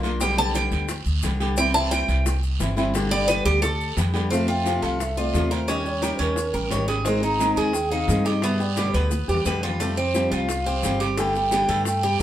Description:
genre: latin, Cuban son and guajira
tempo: 175 BPM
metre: 4/4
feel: straight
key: unclear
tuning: A4 = 445 Hz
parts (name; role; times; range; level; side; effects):
- flamenco guitar; accompaniment; 0.0-12.2 s; B2 to Ab4; -26 LUFS; left 1 dB; none
- upright bass; bass; 0.0-12.2 s; G1 to A2; -26 LUFS; equal; none
- bongos; percussion; 0.0-12.2 s; none; -34 LUFS; left 3 dB; none
- guiro; percussion; 0.0-12.2 s; none; -35 LUFS; right 6 dB; none
- maracas; percussion; 0.0-12.2 s; none; -37 LUFS; left 4 dB; none
- Cuban tres; arpeggios; 0.2-12.2 s; A3 to A5; -26 LUFS; right 2 dB; none
- mellow bass bansuri; melody; 4.5-12.2 s; Bb4 to Bb5; -27 LUFS; right 1 dB; none
room: moderate studio reverb, RT60 0.6 s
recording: band playing live in one room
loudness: -20 LUFS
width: side -12 dB against mid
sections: 0.0-4.3 A section; 4.3-12.2 B section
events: Cuban tres solo 0.0-4.3; drum fill 9.1-9.8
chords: 0.2 G/B; 1.6 C; 2.9 G; 4.3 F; 5.7 Eb7; 7.1 Ab; 8.4 G; 9.8 Fadd9; 11.2 Gadd9

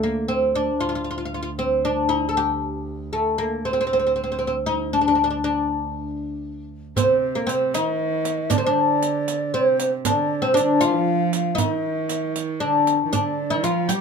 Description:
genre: Persian modal ensemble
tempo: 117 BPM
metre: 3/4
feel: straight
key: D dastgah shur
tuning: A4 = 438 Hz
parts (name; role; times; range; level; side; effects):
- oud; melody; 0.0-14.0 s; A3 to A4; -21 LUFS; left 1 dB; none
- warm double bass; drone; 0.0-7.0 s; D2; -33 LUFS; right 2 dB; none
- breathy mellow ney; second line; 7.0-14.0 s; Bb4 to G5; -27 LUFS; left 2 dB; none
- warm cello; second line; 7.0-14.0 s; C3 to G3; -26 LUFS; right 8 dB; none
- riq; percussion; 7.0-14.0 s; none; -28 LUFS; right 9 dB; none
- tombak; percussion; 7.0-14.0 s; none; -28 LUFS; right 6 dB; none
room: light reverb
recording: minimal, uncompressed stereo recording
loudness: -20 LUFS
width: side -6 dB against mid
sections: 0.0-7.0 A section; 7.0-14.0 B section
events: none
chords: none

